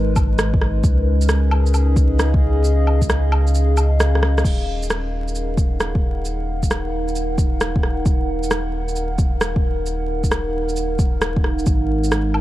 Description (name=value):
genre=future garage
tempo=133 BPM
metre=4/4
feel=swing 67% on 16ths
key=Eb minor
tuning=A4 = 440 Hz
part: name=warbly tape-like pad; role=sustained chords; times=0.0-12.4 s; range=Ab3 to Gb5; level=-24 LUFS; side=equal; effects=chorus, built-in reverb, sidechain pumping
part: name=warm sub bass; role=bass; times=0.0-12.4 s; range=Eb1 to Db2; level=-20 LUFS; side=equal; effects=sidechain pumping
part: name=deep house drum kit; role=drums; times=0.2-12.4 s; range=crash cymbal, rim click, shaker, woodblock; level=-24 LUFS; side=right 1 dB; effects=none
part: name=electronic kick drum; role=drums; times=0.2-11.8 s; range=none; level=-18 LUFS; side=equal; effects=none
room=light reverb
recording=dark, warm production, vinyl crackle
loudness=-16 LUFS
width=side -15 dB against mid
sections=0.0-4.5 A section; 4.5-12.4 B section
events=kick drops out 3.5-4.5; drum fill 4.1-4.5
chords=0.0 Abm; 0.8 Db13; 4.5 Ebm9; 11.7 Ab7(no3)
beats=0.39 | 0.84 1.29 1.74 2.19 | 2.65 3.10 3.55 4.00 | 4.45 4.90 5.35 5.80 | 6.25 6.71 7.16 7.61 | 8.06 8.51 8.96 9.41 | 9.86 10.31 10.77 11.22 | 11.67 12.12